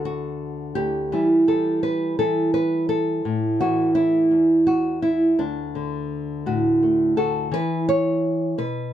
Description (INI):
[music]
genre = folk, solo fingerstyle acoustic guitar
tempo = 56 BPM (dotted quarters)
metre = 6/8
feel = straight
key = D major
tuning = A4 = 440 Hz
[part]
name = nylon-string guitar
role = solo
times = 0.0-8.9 s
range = D2 to C#5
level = -19 LUFS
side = equal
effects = none
[sound]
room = light reverb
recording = close, detailed microphones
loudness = -19 LUFS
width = side -11 dB against mid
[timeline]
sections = 0.0-7.5 A section; 7.5-8.9 B section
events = none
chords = 0.0 N.C.; 1.1 Em; 3.3 A5; 5.4 D; 7.5 N.C.